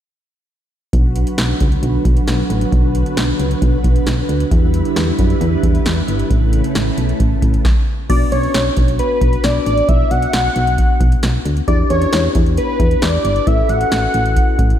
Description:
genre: synth-pop.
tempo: 134 BPM.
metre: 4/4.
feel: straight.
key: B minor.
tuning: A4 = 437 Hz.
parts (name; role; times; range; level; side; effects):
ensemble organ-string; sustained chords; 0.9-7.6 s; C#3 to B4; -20 LUFS; right 1 dB; ensemble chorus.
solid FM bass; bass; 0.9-14.7 s; G1 to F#2; -18 LUFS; equal; none.
electro analog drum machine; drums; 0.9-14.8 s; crash cymbal, hi-hat, kick drum, snare drum; -16 LUFS; equal; none.
wide unison lead; melody; 8.1-14.6 s; B4 to F#5; -18 LUFS; equal; ping-pong delay.
muted felt-like synth keys; accompaniment; 8.1-14.8 s; B3 to B4; -22 LUFS; left 8 dB; chorus.
room: moderate lush hall reverb, RT60 2.0 s, digital ambience.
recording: dreamy mix soaked in reverb.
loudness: -13 LUFS.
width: side -10 dB against mid.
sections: 0.9-8.1 A section; 8.1-14.8 B section.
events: synth keys fill 14.6.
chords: 0.9 Bm; 4.5 Em7; 6.3 Aadd9; 8.1 Bm; 11.7 Em7; 13.5 Aadd9.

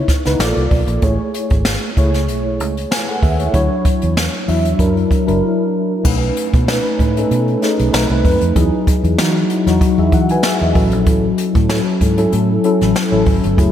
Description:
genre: polished 1980s jazz-funk pop.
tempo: 96 BPM.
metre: 4/4.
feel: swing 54% on 16ths.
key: unclear.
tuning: A4 = 439 Hz.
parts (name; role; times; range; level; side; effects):
mellow tine electric piano; accompaniment; 0.0-13.7 s; F#3 to G#5; -16 LUFS; left 1 dB; medium stereo tremolo, ensemble chorus.
jazz brush drum kit; drums; 0.1-13.7 s; crash cymbal, hi-hat, kick drum, snare drum; -17 LUFS; equal; none.
vintage muted fingered electric bass; bass; 0.3-13.7 s; F#1 to E3; -18 LUFS; equal; none.
room: moderate lush hall reverb, RT60 2.6 s.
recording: dreamy mix soaked in reverb.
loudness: -13 LUFS.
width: side -10 dB against mid.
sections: 0.0-6.1 A section; 6.1-13.7 B section.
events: break 5.4-6.1.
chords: 0.4 A#maj7; 1.0 Amaj7; 3.5 Dmaj9; 4.8 F#aug7; 6.1 B9; 7.9 B7b9; 8.6 Emaj9; 10.8 A6.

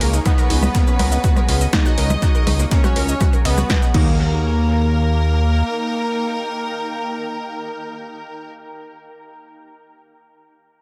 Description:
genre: melodic techno.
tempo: 122 BPM.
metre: 4/4.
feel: straight.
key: unclear.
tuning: A4 = 439 Hz.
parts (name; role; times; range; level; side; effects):
analog synth brass; melody; 0.0-8.5 s; Bb3 to Eb4; -28 LUFS; equal; chorus, dub echo.
warm symphonic violin section; second line; 0.0-8.5 s; Bb4 to Eb5; -31 LUFS; equal; sidechain pumping, dub echo.
unison pluck; arpeggios; 0.0-4.4 s; Bb3 to Gb5; -30 LUFS; equal; sidechain pumping, tape echo.
fat analog bass; bass; 0.0-5.6 s; Db2 to Eb2; -20 LUFS; equal; sidechain pumping.
breakbeat sampler-style drum kit; drums; 0.0-3.9 s; hi-hat, snare drum; -36 LUFS; equal; none.
punchy analog drum machine; drums; 0.0-4.0 s; congas, crash cymbal, hi-hat, rim click, shaker, snare drum; -27 LUFS; equal; sidechain pumping on perc, sidechain pumping on hats, sidechain pumping on cymbals, dub echo.
granular cloud pad; texture; 0.0-8.9 s; Eb4 to Db6; -35 LUFS; equal; built-in reverb, sidechain pumping.
electronic kick drum; drums; 0.3-4.0 s; none; -20 LUFS; equal; none.
room: light reverb.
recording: echo-heavy mix.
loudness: -18 LUFS.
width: mono.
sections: 0.0-4.2 A section; 4.2-8.1 B section.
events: drop 0.0-4.2.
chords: 0.0 Db7(no3); 3.9 Eb5.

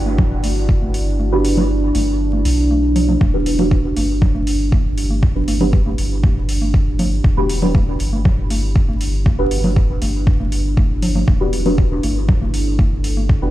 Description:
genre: dub techno.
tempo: 119 BPM.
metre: 4/4.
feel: straight.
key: E minor.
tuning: A4 = 439 Hz.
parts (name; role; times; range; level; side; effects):
deep dark ambient pad; sustained chords; 0.0-13.5 s; D4 to A4; -23 LUFS; right 2 dB; chorus, built-in reverb, sidechain pumping.
soft dub sub bass; bass; 0.0-13.5 s; E1 to B1; -19 LUFS; equal; sidechain pumping.
congas; percussion; 0.1-13.3 s; none; -24 LUFS; equal; overdrive, sidechain pumping on perc, dub echo.
electronic kick drum; drums; 0.2-13.4 s; none; -15 LUFS; equal; overdrive.
electronic hi-hat; drums; 0.4-13.1 s; none; -31 LUFS; left 1 dB; overdrive.
deep mellow chord stab; stabs; 1.3-13.5 s; D4 to B4; -23 LUFS; equal; chorus, phaser, sidechain pumping, dub echo.
room: little or no reverb.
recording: played on a big sound system in a bare room, stone room reverb, vinyl crackle.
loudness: -14 LUFS.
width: side -14 dB against mid.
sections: 0.0-13.5 A section.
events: kick drops out 1.2-3.2.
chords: 0.0 Em7.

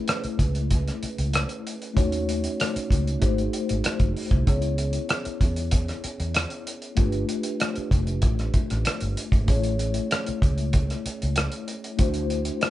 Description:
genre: lush 1970s-style soul.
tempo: 96 BPM.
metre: 4/4.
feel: straight.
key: unclear.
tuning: A4 = 440 Hz.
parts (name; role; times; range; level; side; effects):
mellow tine electric piano; accompaniment; 0.0-12.7 s; A3 to C#5; -29 LUFS; left 2 dB; medium stereo tremolo.
cloth-damped thuddy drum kit; drums; 0.1-12.7 s; hi-hat, kick drum, rim click; -24 LUFS; equal; none.
vintage muted fingered electric bass; bass; 0.2-12.5 s; F1 to E2; -27 LUFS; equal; none.
room: light reverb.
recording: band playing live in one room, nothing above 10.4 kHz.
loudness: -22 LUFS.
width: side -15 dB against mid.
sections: 0.0-12.7 A section.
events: none.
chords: 0.0 Amaj9; 2.0 D#m7b5; 3.2 G#7b9; 4.5 C#m7; 7.0 G9; 9.5 Amaj7; 12.0 D9.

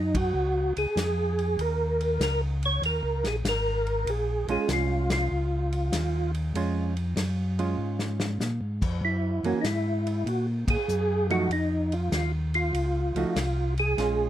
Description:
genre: soul jazz organ trio.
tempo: 97 BPM.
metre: 4/4.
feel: swing 67% on 8ths.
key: Bb minor.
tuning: A4 = 441 Hz.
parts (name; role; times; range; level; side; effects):
percussive tonewheel organ; melody; 0.0-14.3 s; Eb4 to Db5; -27 LUFS; right 1 dB; slow rotary speaker, chorus vibrato.
mellow tonewheel organ; bass; 0.0-14.3 s; Ab1 to Bb2; -28 LUFS; equal; slow rotary speaker.
warm soul drum kit; drums; 0.1-14.2 s; crash cymbal, hi-hat, kick drum, ride cymbal, snare drum; -34 LUFS; left 1 dB; none.
hollow-body jazz guitar; accompaniment; 4.5-14.3 s; Fb3 to Gb4; -30 LUFS; right 5 dB; none.
room: light reverb.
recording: none.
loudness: -24 LUFS.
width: side -11 dB against mid.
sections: 0.0-14.3 A section.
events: band accent 0.0-0.4, 5.0-5.3, 10.6-10.9; drum fill 7.8-8.4.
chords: 0.0 Ebm7; 4.1 Bbm7; 9.0 Gb7; 11.5 F7(no3).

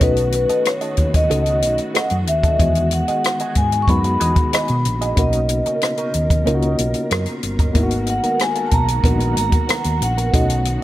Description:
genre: lush 1970s-style soul.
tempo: 93 BPM.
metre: 4/4.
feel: straight.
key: G# minor.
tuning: A4 = 440 Hz.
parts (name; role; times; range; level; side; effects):
vibraphone with soft mallets; melody; 0.0-10.8 s; B4 to C#6; -21 LUFS; equal; none.
reed electric piano; accompaniment; 0.0-10.8 s; D#3 to F#4; -25 LUFS; left 2 dB; fast tremolo.
dark studio string section; sustained chords; 0.0-10.8 s; B2 to A#4; -30 LUFS; left 1 dB; none.
direct-recorded clean electric guitar; riff; 0.0-10.7 s; B3 to D#5; -27 LUFS; right 6 dB; wah.
hollow-body short-scale fingered electric bass; bass; 0.0-10.8 s; G1 to B2; -20 LUFS; equal; none.
compact cocktail drum kit; drums; 0.0-10.8 s; hi-hat, kick drum, rim click; -19 LUFS; equal; none.
room: small room reverb.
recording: none.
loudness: -16 LUFS.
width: side -14 dB against mid.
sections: 0.0-10.8 A section.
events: none.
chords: 0.0 B7; 2.6 Emaj9; 5.2 Bmaj9; 7.8 G#m9.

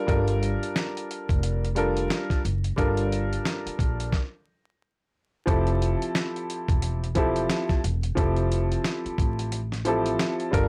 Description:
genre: hip hop, boom-bap hip-hop.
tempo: 89 BPM.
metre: 4/4.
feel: swing 60% on 16ths.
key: F major.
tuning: A4 = 439 Hz.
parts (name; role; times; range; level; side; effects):
warm concert grand piano; accompaniment; 0.0-10.7 s; F3 to Bb4; -30 LUFS; equal; cassette tape, high-pass filter, low-pass filter.
upright bass; bass; 0.1-10.7 s; E1 to Bb1; -29 LUFS; equal; tube saturation.
dusty soul sampler-style drum kit; drums; 0.1-10.7 s; hi-hat, kick drum, snare drum; -30 LUFS; equal; vintage 12-bit sampler grit.
room: little or no reverb.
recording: dry, gritty hardware recording, transformer saturation, vinyl crackle.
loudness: -26 LUFS.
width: mono.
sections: 0.0-5.5 A section; 5.5-10.7 B section.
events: stop 4.1-5.5.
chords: 0.0 Gm7; 5.5 Fmaj7.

